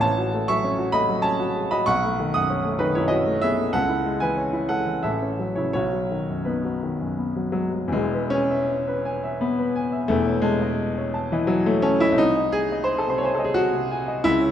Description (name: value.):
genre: classical, romantic character piece for solo piano.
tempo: 75-100 BPM.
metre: 3/4.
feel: rubato.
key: E major.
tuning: A4 = 440 Hz.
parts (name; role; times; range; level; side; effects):
warm grand piano; solo; 0.0-14.5 s; E1 to D#6; -20 LUFS; equal; none.
room: moderate concert hall reverb, RT60 2.2 s.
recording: none.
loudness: -20 LUFS.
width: side -10 dB against mid.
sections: 0.0-7.9 A section; 7.9-14.5 B section.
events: none.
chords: 0.0 F#m/A; 1.9 B9; 3.7 C#m7; 5.0 F#m7/A; 5.7 B; 7.9 E; 10.1 F#m13/E; 12.2 G#7/B#.